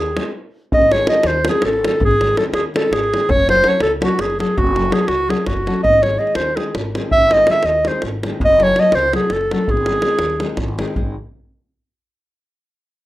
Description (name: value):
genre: balkan folk, Balkan wedding band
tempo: 328 BPM (eighths)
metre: 7/8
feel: straight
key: unclear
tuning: A4 = 440 Hz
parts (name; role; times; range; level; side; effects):
- warm clarinet; melody; 0.0-10.6 s; F#4 to E5; -15 LUFS; equal; none
- upright bass; bass; 0.0-11.1 s; F#1 to D#2; -25 LUFS; equal; none
- davul; percussion; 0.1-11.1 s; none; -22 LUFS; equal; none
- nylon-string guitar; accompaniment; 0.2-11.1 s; D#3 to A4; -24 LUFS; left 2 dB; none
room: moderate studio reverb, RT60 0.5 s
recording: rough home demo mix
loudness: -14 LUFS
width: side -15 dB against mid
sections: 0.7-11.0 A section; 11.0-12.3 B section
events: stop 0.4-0.7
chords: 0.0 G#; 3.3 F#m; 5.8 G#; 8.4 F#m; 9.7 G#